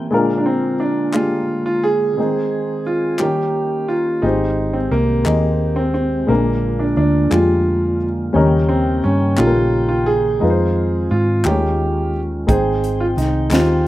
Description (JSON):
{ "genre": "slow gospel", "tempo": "58 BPM (dotted quarters)", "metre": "6/8", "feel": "straight", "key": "Ab major", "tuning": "A4 = 440 Hz", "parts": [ { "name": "warm baby grand piano", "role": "accompaniment", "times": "0.0-13.9 s", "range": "Ab2 to Ab5", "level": "-21 LUFS", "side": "left 2 dB", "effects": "none" }, { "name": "mellow tonewheel organ", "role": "sustained chords", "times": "0.0-13.9 s", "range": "Db3 to G5", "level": "-24 LUFS", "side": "right 1 dB", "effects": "fast rotary speaker" }, { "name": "clear concert grand piano", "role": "melody", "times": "0.4-13.9 s", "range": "Bb3 to Ab4", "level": "-19 LUFS", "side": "right 1 dB", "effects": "none" }, { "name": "group handclap", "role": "percussion", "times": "1.1-13.8 s", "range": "none", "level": "-29 LUFS", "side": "left 2 dB", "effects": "none" }, { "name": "hollow-body short-scale fingered electric bass", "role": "bass", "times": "4.2-13.9 s", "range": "Ab1 to Ab2", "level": "-19 LUFS", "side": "equal", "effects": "none" }, { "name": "crisp fusion drum kit", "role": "drums", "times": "12.5-13.7 s", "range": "hi-hat, kick drum, snare drum", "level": "-20 LUFS", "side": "equal", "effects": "none" } ], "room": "light reverb, small room ambience", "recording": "rough home demo mix", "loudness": "-15 LUFS", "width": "side -15 dB against mid", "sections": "0.0-13.9 A section", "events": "none", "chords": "0.1 Bb7; 2.2 Ab/Eb; 3.2 Eb7; 4.2 Abmaj7; 6.3 Bb7; 8.4 Eb7; 10.4 Fm7; 11.5 Eb9sus4; 12.5 Abmaj7", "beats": "| 0.11 1.14 | 2.17 3.21 | 4.24 5.27 | 6.30 7.33 | 8.36 9.39 | 10.42 11.45 | 12.48 13.52" }